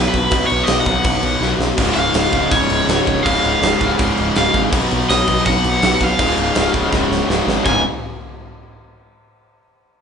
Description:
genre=punk rock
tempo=163 BPM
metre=4/4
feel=straight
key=Db mixolydian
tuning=A4 = 440 Hz
part: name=crunchy overdriven guitar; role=melody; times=0.0-7.8 s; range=Cb5 to Ab5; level=-19 LUFS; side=equal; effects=none
part: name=distorted electric guitar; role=riff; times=0.0-7.8 s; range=Db2 to Cb4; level=-22 LUFS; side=left 7 dB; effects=overdrive
part: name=overdriven semi-hollow guitar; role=riff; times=0.0-7.8 s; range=Db2 to Cb5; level=-23 LUFS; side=right 8 dB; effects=none
part: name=growling picked electric bass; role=bass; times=0.0-7.8 s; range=Db1 to Cb2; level=-23 LUFS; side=equal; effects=overdrive
part: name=big rock drum kit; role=drums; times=0.1-7.7 s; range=china cymbal, crash cymbal, kick drum, snare drum, splash cymbal, toms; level=-19 LUFS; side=equal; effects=none
part: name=distorted electric guitar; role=riff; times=1.8-7.8 s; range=Db2 to Cb4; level=-25 LUFS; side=right 1 dB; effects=overdrive
room=light reverb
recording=band playing live in one room, nothing above 10.4 kHz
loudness=-14 LUFS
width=side -7 dB against mid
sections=0.0-7.7 A section; 7.7-9.1 B section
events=drum fill 1.4-1.8, 6.9-7.7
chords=0.0 Cb; 1.8 Db; 4.7 Cb; 6.2 Db; 7.7 Db5

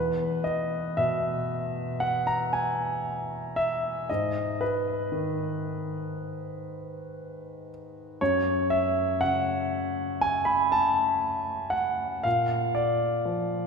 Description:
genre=classical, impressionist solo piano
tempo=58 BPM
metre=4/4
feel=rubato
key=E lydian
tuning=A4 = 440 Hz
part: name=warm concert grand piano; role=solo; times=0.0-13.7 s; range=E2 to B5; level=-25 LUFS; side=equal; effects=none
room=wet church reverb, RT60 3.5 s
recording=recorded in a church or concert hall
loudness=-25 LUFS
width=side -5 dB against mid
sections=0.0-13.7 A section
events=none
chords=0.0 E; 4.1 G#m; 8.2 F#m; 12.2 A#

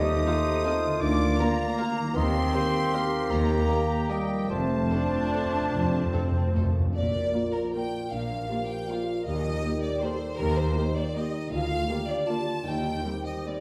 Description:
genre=classical, orchestral ballroom waltz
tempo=140-172 BPM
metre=3/4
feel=rubato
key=Bb major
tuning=A4 = 440 Hz
part: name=rich studio violin section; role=melody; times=0.0-13.5 s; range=G4 to Eb6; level=-40 LUFS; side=equal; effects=none
part: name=bright clarinet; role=second line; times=0.0-6.7 s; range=F4 to G4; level=-38 LUFS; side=equal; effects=none
part: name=clear oboe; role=second line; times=0.0-6.7 s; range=G4 to F5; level=-40 LUFS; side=equal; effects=none
part: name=silver concert flute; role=second line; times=0.0-6.8 s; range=G5 to Eb6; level=-39 LUFS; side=equal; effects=none
part: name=dark bassoon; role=accompaniment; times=0.0-6.7 s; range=A3 to C4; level=-35 LUFS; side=equal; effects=none
part: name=mellow French horn section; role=sustained chords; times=0.0-13.6 s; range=G3 to A4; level=-34 LUFS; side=equal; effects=none
part: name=concert harp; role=arpeggios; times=0.0-13.6 s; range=Bb2 to D6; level=-39 LUFS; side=equal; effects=none
part: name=clear studio double bass section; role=bass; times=0.0-13.0 s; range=F1 to Eb2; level=-35 LUFS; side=equal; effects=none
part: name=rich studio cello section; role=bass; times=0.0-13.0 s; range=D2 to Bb2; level=-35 LUFS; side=equal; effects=none
part: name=clear studio violin section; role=second line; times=0.3-13.6 s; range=A4 to A5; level=-36 LUFS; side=equal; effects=none
part: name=warm studio viola section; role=accompaniment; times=0.3-13.5 s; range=G3 to G4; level=-37 LUFS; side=equal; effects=none
part: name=timpani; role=percussion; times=4.5-6.9 s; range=F2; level=-31 LUFS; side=equal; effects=none
room=wet recital hall reverb, RT60 1.4 s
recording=heard from further back in the room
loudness=-27 LUFS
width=mono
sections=0.0-6.9 A section; 6.9-13.6 B section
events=timpani fill 4.5-6.9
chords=0.0 F7/Eb; 1.0 Bb/D; 2.2 Eb; 4.5 F; 6.9 Bb; 9.3 Eb; 11.5 Bb/D; 12.7 Cm/Eb

